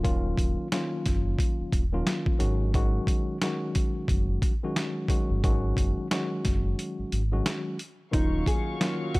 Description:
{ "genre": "hip hop, boom-bap hip-hop", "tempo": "89 BPM", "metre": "4/4", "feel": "swing 59% on 16ths", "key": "unclear", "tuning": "A4 = 440 Hz", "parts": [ { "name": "tine electric piano", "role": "accompaniment", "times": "0.0-9.2 s", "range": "Eb3 to Gb4", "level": "-31 LUFS", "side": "left 1 dB", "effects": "medium stereo tremolo, cassette tape, high-pass filter, low-pass filter" }, { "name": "sub bass with octave", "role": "bass", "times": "0.0-8.4 s", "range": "Eb1 to Ab1", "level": "-28 LUFS", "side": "equal", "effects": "transformer saturation" }, { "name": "boom bap sampler-style drum kit", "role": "drums", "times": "0.0-9.2 s", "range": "hi-hat, kick drum, snare drum", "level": "-27 LUFS", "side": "equal", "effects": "none" }, { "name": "nylon-string guitar", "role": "melody", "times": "8.1-9.2 s", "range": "Eb4 to Ab4", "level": "-32 LUFS", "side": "equal", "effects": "high-pass filter, low-pass filter" }, { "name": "warm studio string section", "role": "sustained chords", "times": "8.1-9.2 s", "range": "Gb3 to Db6", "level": "-36 LUFS", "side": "left 1 dB", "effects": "high-pass filter, low-pass filter" } ], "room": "little or no reverb", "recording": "dry, gritty hardware recording", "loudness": "-25 LUFS", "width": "side -23 dB against mid", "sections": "0.0-8.1 A section; 8.1-9.2 B section", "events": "break 6.8-8.1", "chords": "0.0 Ebm9; 2.4 Ab7sus4; 8.1 Ebm9" }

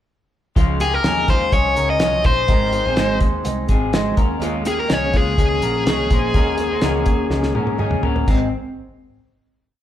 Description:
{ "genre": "jangly indie pop", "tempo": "124 BPM", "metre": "4/4", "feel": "straight", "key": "Ab major", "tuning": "A4 = 439 Hz", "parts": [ { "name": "fingerpicked steel-string acoustic guitar", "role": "accompaniment", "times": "0.6-8.5 s", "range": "Ab2 to Ab4", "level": "-26 LUFS", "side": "right 5 dB", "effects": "none" }, { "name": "electric guitar through a small old amp", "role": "arpeggios", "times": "0.6-8.5 s", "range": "Ab3 to Db5", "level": "-24 LUFS", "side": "left 5 dB", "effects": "spring reverb" }, { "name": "vintage muted picked electric bass", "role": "bass", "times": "0.6-8.5 s", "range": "Ab1 to Ab2", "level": "-25 LUFS", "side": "equal", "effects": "none" }, { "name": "cloth-damped thuddy drum kit", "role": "drums", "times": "0.6-8.4 s", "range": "crash cymbal, hi-hat, kick drum, snare drum, toms", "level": "-19 LUFS", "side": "equal", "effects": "none" }, { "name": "dark smooth lead guitar", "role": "melody", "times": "0.8-7.8 s", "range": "Ab4 to Eb5", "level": "-20 LUFS", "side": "left 2 dB", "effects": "overdrive" } ], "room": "moderate large studio reverb, RT60 1.2 s", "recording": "band playing live in one room", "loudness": "-16 LUFS", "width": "side -11 dB against mid", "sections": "0.6-8.3 pre-chorus; 8.3-9.8 final chord", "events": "drum fill 7.3-8.3", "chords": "0.6 Dbadd9; 2.5 Ab; 4.2 Eb7sus4; 8.3 Ab" }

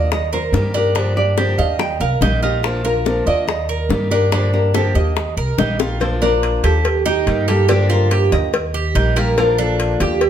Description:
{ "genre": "latin, Cuban son and guajira", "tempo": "142 BPM", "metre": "4/4", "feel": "straight", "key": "unclear", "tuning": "A4 = 442 Hz", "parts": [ { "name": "nylon-string guitar", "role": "melody", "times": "0.0-10.3 s", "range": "G4 to G5", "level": "-21 LUFS", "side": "equal", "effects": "none" }, { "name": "fingerpicked steel-string acoustic guitar", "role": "accompaniment", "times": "0.0-10.3 s", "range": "D3 to G4", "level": "-24 LUFS", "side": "left 1 dB", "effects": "none" }, { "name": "Cuban tres", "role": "arpeggios", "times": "0.0-10.3 s", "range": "D4 to Eb5", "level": "-21 LUFS", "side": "right 5 dB", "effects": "none" }, { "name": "upright bass", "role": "bass", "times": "0.0-10.3 s", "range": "Bb1 to G2", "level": "-19 LUFS", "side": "equal", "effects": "none" }, { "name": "bongos and cowbell", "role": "percussion", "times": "0.1-10.3 s", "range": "none", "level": "-24 LUFS", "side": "left 6 dB", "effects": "none" } ], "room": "moderate large studio reverb, RT60 1.3 s", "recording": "none", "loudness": "-15 LUFS", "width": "side -9 dB against mid", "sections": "0.0-6.0 A section; 6.0-10.3 B section", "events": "drum fill 5.8", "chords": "0.1 Eb; 1.0 Gm7; 1.8 Eb; 2.6 Bb; 3.5 Eb; 4.3 Gm7; 5.2 Eb; 6.0 Bb; 6.8 Eb; 7.7 Gm7; 8.5 Eb; 9.4 Bb" }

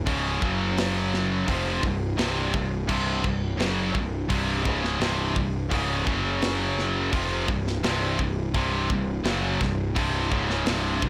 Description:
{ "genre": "heavy metal", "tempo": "85 BPM", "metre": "4/4", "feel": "straight", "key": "unclear", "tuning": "A4 = 440 Hz", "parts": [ { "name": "fuzz picked electric bass", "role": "bass", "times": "0.0-11.1 s", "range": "C1 to F#1", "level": "-32 LUFS", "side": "equal", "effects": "overdrive" }, { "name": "scooped high-gain guitar", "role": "riff", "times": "0.1-11.1 s", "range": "C2 to F#3", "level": "-32 LUFS", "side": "equal", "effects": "distortion" }, { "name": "scooped high-gain guitar", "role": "riff", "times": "0.1-11.1 s", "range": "C2 to F#3", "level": "-33 LUFS", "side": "equal", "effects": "distortion" }, { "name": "tight distorted guitar", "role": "riff", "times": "0.1-11.1 s", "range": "C2 to F#3", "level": "-33 LUFS", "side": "equal", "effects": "distortion" }, { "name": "tight metal drum kit", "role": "drums", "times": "0.1-11.1 s", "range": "crash cymbal, hi-hat, kick drum, snare drum", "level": "-32 LUFS", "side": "equal", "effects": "soft clipping on kick" } ], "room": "little or no reverb", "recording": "blown-out, overdriven recording, overdrive", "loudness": "-26 LUFS", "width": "mono", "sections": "0.0-11.1 A section", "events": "none", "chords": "0.4 F#5; 1.5 C5; 6.1 F#5; 7.1 C5" }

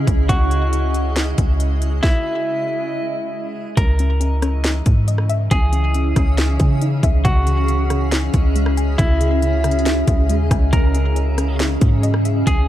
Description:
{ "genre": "hip hop, atmospheric cloud-rap", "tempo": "138 BPM", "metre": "4/4", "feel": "half-time", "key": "C# minor", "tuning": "A4 = 441 Hz", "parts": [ { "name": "semi-hollow electric guitar", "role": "melody", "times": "0.0-12.7 s", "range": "E4 to A#4", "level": "-25 LUFS", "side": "equal", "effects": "spring reverb, digital delay" }, { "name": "granular cloud pad", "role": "sustained chords", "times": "0.0-12.7 s", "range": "C#3 to D#5", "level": "-25 LUFS", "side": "equal", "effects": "built-in reverb, sidechain pumping" }, { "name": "clean 808-style bass", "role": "bass", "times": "0.0-12.7 s", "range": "C#2 to C#3", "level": "-18 LUFS", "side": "equal", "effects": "none" }, { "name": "backwards swelling texture", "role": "texture", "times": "0.0-12.7 s", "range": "G#3 to D#5", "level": "-32 LUFS", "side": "right 2 dB", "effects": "built-in reverb" }, { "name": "trap drum kit", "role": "drums", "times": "0.1-12.6 s", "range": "hi-hat, kick drum, rim click, snare drum", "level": "-19 LUFS", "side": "equal", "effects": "none" }, { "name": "soft round pluck", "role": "arpeggios", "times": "3.8-12.7 s", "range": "C#3 to G#5", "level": "-29 LUFS", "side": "left 3 dB", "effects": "chorus, digital delay" } ], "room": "little or no reverb", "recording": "dark, warm production", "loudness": "-15 LUFS", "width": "side -13 dB against mid", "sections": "0.0-3.8 A section; 3.8-12.7 B section", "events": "stop 2.0-3.8", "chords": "0.3 Emaj7/C#; 3.8 C#madd9; 7.3 Emaj7/C#; 10.7 C#madd9" }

